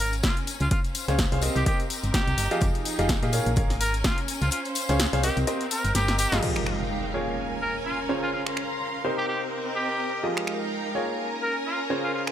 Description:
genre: piano house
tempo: 126 BPM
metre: 4/4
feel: swing 56% on 16ths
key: F minor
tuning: A4 = 440 Hz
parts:
  - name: clear trumpet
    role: melody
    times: 0.0-12.2 s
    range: F4 to Bb4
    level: -31 LUFS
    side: equal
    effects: ping-pong delay
  - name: solid FM bass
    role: bass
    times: 0.0-6.4 s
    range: F1 to Bb2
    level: -26 LUFS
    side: equal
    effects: sidechain pumping
  - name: punchy analog drum machine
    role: drums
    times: 0.0-12.3 s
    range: crash cymbal, finger snaps, hi-hat, snare drum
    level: -30 LUFS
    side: left 1 dB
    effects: overdrive
  - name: tambourine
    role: percussion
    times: 0.0-6.4 s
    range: none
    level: -36 LUFS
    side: left 7 dB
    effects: none
  - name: rich studio string section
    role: texture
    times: 0.0-12.3 s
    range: Ab3 to C6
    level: -33 LUFS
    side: right 1 dB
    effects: sidechain pumping
  - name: electronic kick drum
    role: drums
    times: 0.2-4.2 s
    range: none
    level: -26 LUFS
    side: equal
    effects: overdrive
  - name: bright upright piano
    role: riff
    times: 1.1-12.3 s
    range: C3 to F5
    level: -30 LUFS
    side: equal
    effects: sidechain pumping, ping-pong delay
  - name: string machine, violins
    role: sustained chords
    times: 6.4-12.3 s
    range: Bb4 to Bb5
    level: -34 LUFS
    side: left 1 dB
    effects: ensemble chorus, sidechain pumping
  - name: impact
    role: sound effects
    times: 6.4-8.3 s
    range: none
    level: -34 LUFS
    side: equal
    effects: none
room: light reverb, studio ambience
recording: none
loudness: -23 LUFS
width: side -10 dB against mid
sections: 0.0-6.4 A section; 6.4-12.3 B section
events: kick drops out 4.5-6.4; drum fill 6.0-6.4; impact 6.4-8.3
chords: 0.5 Dbmaj7; 1.4 Cm7; 2.6 Fm9; 3.3 Bbm7; 4.3 Dbmaj7; 5.2 Cm7; 6.4 Fm9; 7.1 Bbm7; 8.1 Dbmaj7; 9.0 Cm7; 10.2 Fm9; 10.9 Bbm7

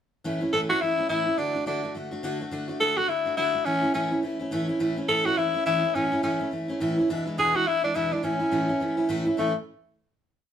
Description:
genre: rock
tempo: 210 BPM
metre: 4/4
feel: swing 59% on 8ths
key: A major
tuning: A4 = 440 Hz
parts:
  - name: picked steel-string acoustic guitar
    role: accompaniment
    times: 0.2-9.5 s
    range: E2 to F#4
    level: -27 LUFS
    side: right 1 dB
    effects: none
  - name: raspy tenor saxophone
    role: melody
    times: 0.5-9.5 s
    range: A3 to A4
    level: -24 LUFS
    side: left 1 dB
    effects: none
room: moderate studio reverb, RT60 0.6 s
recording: band playing live in one room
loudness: -23 LUFS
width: side -9 dB against mid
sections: 0.2-9.4 A section; 9.4-10.5 final chord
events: none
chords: 0.2 A; 1.4 D; 3.7 A; 7.1 E7; 8.2 A

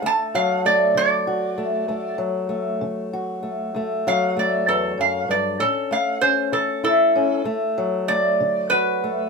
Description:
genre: acoustic country blues, solo or duo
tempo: 65 BPM (dotted quarters)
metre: 12/8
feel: straight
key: D major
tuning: A4 = 441 Hz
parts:
  - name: lap resonator guitar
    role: melody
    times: 0.0-9.3 s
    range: A4 to A5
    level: -20 LUFS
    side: right 2 dB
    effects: none
  - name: fingerpicked old ladder-braced acoustic guitar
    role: accompaniment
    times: 0.0-9.3 s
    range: D2 to F#4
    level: -22 LUFS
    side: left 3 dB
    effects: none
room: moderate studio reverb, RT60 0.5 s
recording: band playing live in one room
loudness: -19 LUFS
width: side -4 dB against mid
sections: 0.0-7.5 A section; 7.5-9.3 B section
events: resonator guitar played with a steel bar solo 7.5-9.3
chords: 0.0 D; 5.6 A; 7.5 D

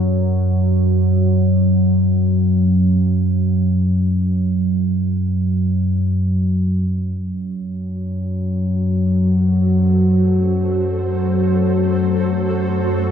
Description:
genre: dark ambient drone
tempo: free time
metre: none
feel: none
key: unclear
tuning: A4 = 440 Hz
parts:
  - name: deep rumbling drone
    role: drone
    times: 0.0-13.1 s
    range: F#2 to F#3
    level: -15 LUFS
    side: equal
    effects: built-in reverb
  - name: granular cloud pad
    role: sustained chords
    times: 8.8-13.1 s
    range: F#4 to B#4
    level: -27 LUFS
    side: right 1 dB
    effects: built-in reverb
room: wet huge ambient reverb, RT60 8.4 s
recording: none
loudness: -15 LUFS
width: side -8 dB against mid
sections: 0.0-6.9 A section; 6.9-13.1 B section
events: fade-in on ambient pad 6.9-13.1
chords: 0.0 N.C.; 6.9 F#m

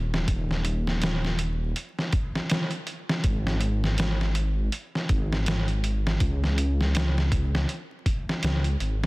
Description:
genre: trip hop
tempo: 81 BPM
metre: 4/4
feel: swing 57% on 16ths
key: unclear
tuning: A4 = 440 Hz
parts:
  - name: dark detuned saw bass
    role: bass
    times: 0.0-9.1 s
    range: Eb1 to Db2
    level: -25 LUFS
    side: equal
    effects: none
  - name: trip hop sampler-style drum kit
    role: drums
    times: 0.1-9.1 s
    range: hi-hat, kick drum, snare drum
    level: -27 LUFS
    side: equal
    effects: studio ambience
room: digital ambience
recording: dense, heavily limited modern master, vinyl crackle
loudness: -24 LUFS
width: side -23 dB against mid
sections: 0.0-9.1 A section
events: none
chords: none

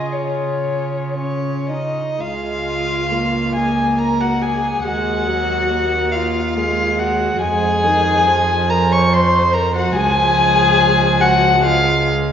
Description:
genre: classical, slow romantic movement for string quartet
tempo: 70 BPM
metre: 3/4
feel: uneven beats, rubato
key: Db major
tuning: A4 = 442 Hz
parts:
  - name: dark violin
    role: melody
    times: 0.0-12.1 s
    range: Db4 to Eb5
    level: -22 LUFS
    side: left 4 dB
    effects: none
  - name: warm violin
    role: second line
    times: 0.0-12.1 s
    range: Ab4 to Db6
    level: -18 LUFS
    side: left 1 dB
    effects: none
  - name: dark viola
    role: accompaniment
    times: 0.0-12.3 s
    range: Eb3 to F4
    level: -22 LUFS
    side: right 2 dB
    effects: none
  - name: rich cello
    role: bass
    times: 0.0-12.3 s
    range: Db2 to Db3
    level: -22 LUFS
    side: right 3 dB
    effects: none
room: wet scoring stage reverb, RT60 1.6 s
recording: heard from further back in the room, nothing above 7.5 kHz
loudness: -14 LUFS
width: side -8 dB against mid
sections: 0.0-2.2 A section; 2.2-12.3 A section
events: none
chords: 0.0 Db; 4.8 Ab5/Eb; 7.4 Fmadd11; 10.0 Db

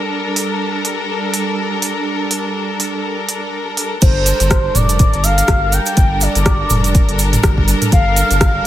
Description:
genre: afro house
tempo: 123 BPM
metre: 4/4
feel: swing 58% on 16ths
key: G minor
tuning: A4 = 440 Hz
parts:
  - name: rich studio string section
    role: sustained chords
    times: 0.0-8.7 s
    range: G3 to Bb4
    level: -20 LUFS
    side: equal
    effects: sidechain pumping, low-pass filter
  - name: afro-pop drum kit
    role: drums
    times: 0.4-8.5 s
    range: crash cymbal, hi-hat, rim click, toms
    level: -19 LUFS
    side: right 1 dB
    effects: small room reverb
  - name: expressive portamento lead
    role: melody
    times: 4.0-8.7 s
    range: C5 to G5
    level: -19 LUFS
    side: equal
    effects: lush chorus, dub echo
  - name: round analog bass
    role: bass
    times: 4.0-8.6 s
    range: F1 to G1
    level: -17 LUFS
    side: equal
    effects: sidechain pumping
  - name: electronic kick drum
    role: drums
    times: 4.0-8.5 s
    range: none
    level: -14 LUFS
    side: equal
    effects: small room reverb
  - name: tube shaker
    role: percussion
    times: 4.0-8.5 s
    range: none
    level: -24 LUFS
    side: right 4 dB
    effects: none
room: light reverb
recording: none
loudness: -13 LUFS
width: side -13 dB against mid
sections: 0.0-4.0 A section; 4.0-8.7 B section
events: drop 4.0-8.7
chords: 0.0 Gm; 4.0 Gm7

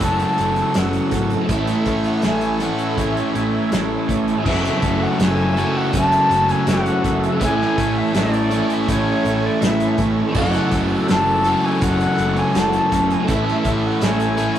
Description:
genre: rock, shoegaze and dream pop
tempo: 81 BPM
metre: 4/4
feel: straight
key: unclear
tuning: A4 = 440 Hz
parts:
  - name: reedy silver concert flute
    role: melody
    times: 0.0-14.6 s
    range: C#5 to A5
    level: -23 LUFS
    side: left 2 dB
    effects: none
  - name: phased analog pad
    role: sustained chords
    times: 0.0-14.6 s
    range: A4 to E6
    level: -28 LUFS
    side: equal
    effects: phaser, chorus
  - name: twelve-string electric guitar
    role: arpeggios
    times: 0.0-14.6 s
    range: E3 to C#4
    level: -28 LUFS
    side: right 1 dB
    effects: none
  - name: biting overdriven guitar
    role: riff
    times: 0.0-14.6 s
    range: F#3 to A4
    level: -25 LUFS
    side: equal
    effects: none
  - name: overdriven electric guitar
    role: riff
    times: 0.0-14.6 s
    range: F#3 to A4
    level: -23 LUFS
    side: right 4 dB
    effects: none
  - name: thick fuzz guitar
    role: riff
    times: 0.0-14.6 s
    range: F#2 to A3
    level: -24 LUFS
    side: left 3 dB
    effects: distortion
  - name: overdriven picked electric bass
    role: bass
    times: 0.0-14.5 s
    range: F#1 to A1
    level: -27 LUFS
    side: equal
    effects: none
  - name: loose indie drum kit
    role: drums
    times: 0.0-14.6 s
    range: crash cymbal, hi-hat, kick drum, snare drum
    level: -24 LUFS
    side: equal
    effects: none
room: wet studio reverb, RT60 0.5 s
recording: rough rehearsal-room recording, tube saturation, cassette tape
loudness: -16 LUFS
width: side -10 dB against mid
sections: 0.0-4.5 A section; 4.5-14.6 B section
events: none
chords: 0.0 F#m9; 1.5 Amaj7; 4.5 F#m7; 7.4 Amaj7; 10.4 F#m7; 13.3 Amaj7

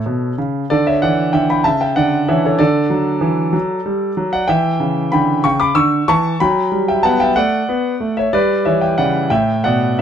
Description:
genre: classical-period piano sonatina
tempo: 63 BPM (dotted quarters)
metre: 6/8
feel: rubato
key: D major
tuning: A4 = 442 Hz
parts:
  - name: clear concert grand piano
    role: solo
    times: 0.0-10.0 s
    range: A2 to E6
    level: -14 LUFS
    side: equal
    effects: none
room: light reverb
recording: dark, warm production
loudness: -14 LUFS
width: side -8 dB against mid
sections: 0.0-10.0 A section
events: none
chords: 0.0 A; 0.7 D5; 1.6 A/C#; 2.6 D; 4.5 C#dim; 6.4 D/F#; 8.3 Em; 9.3 A5

